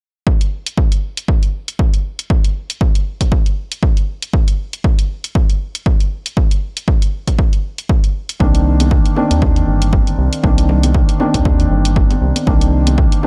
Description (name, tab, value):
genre	deep house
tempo	118 BPM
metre	4/4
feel	swing 57% on 16ths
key	unclear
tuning	A4 = 440 Hz
part	electronic kick drum	drums	0.3-13.1 s	none	-16 LUFS	equal	none
part	electronic hi-hat	drums	0.4-13.2 s	none	-27 LUFS	equal	none
part	felt-muted upright piano	stabs	8.4-13.3 s	Eb3 to D4	-20 LUFS	equal	sidechain pumping, analog delay
part	rubbery square bass	bass	8.4-13.1 s	G1 to Eb2	-17 LUFS	equal	sidechain pumping
part	congas	percussion	8.8-13.3 s	none	-25 LUFS	equal	none
room	digital ambience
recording	dry, gritty hardware recording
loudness	-15 LUFS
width	mono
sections	0.3-13.3 A section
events	none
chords	0.3 N.C.; 8.4 Cm9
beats	| 0.27 0.78 1.28 1.79 | 2.30 2.81 3.32 3.83 | 4.33 4.84 5.35 5.86 | 6.37 6.88 7.38 7.89 | 8.40 8.91 9.42 9.93 | 10.44 10.95 11.45 11.96 | 12.47 12.98